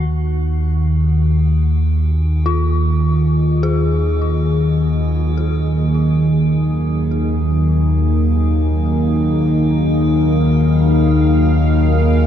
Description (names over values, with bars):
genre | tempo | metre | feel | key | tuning
dark ambient drone | free time | none | none | Eb minor | A4 = 439 Hz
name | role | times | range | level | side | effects
analog drone | drone | 0.0-12.3 s | Eb2 to Eb3 | -14 LUFS | equal | chorus
metallic inharmonic drone | texture | 0.0-12.3 s | Gb4 to Ab4 | -32 LUFS | equal | chorus, built-in reverb, phaser, shimmer reverb
dark analog pad | sustained chords | 2.7-12.3 s | Gb3 to F5 | -24 LUFS | right 1 dB | chorus, shimmer reverb
dark detuned synth bell | arpeggios | 2.5-12.3 s | F4 to Ab4 | -25 LUFS | left 4 dB | chorus, phaser, ping-pong delay, shimmer reverb
room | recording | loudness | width
light reverb | dark, warm production | -13 LUFS | side -9 dB against mid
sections
0.1-12.3 A section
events
fade-in on analog synth pad 0.1-12.3; fade-in on synth drone 0.1-12.3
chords
0.1 Ebm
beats
free time